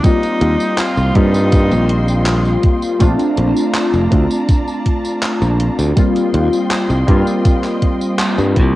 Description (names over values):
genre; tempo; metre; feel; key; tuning
vaporwave; 81 BPM; 4/4; straight; Eb lydian; A4 = 440 Hz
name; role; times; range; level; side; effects
clear tenor saxophone; melody; 0.0-2.3 s; Eb4 to F4; -23 LUFS; equal; cassette tape, tape echo
warbly lo-fi synth keys; accompaniment; 0.0-8.8 s; G3 to F4; -16 LUFS; left 1 dB; wide subtle chorus, cassette tape, analog delay
muted studio string section; sustained chords; 0.0-8.8 s; F4 to C6; -27 LUFS; equal; cassette tape
electronic kick drum; drums; 0.0-8.7 s; none; -14 LUFS; equal; studio reverb
gated 80s digital drum machine; drums; 0.0-8.7 s; handclaps, hi-hat, tambourine; -23 LUFS; equal; gated reverb, studio reverb
modern bright fingered electric bass; bass; 0.4-8.8 s; F1 to G2; -15 LUFS; equal; none
room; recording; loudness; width
light reverb; home recording on cassette; -12 LUFS; side -16 dB against mid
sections
0.0-8.8 A section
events
band accent 8.2-8.6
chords
0.0 Eb69; 3.0 Bbmaj7; 6.0 Eb69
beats
| 0.04 0.79 1.53 2.27 | 3.01 3.75 4.49 5.23 | 5.97 6.71 7.45 8.19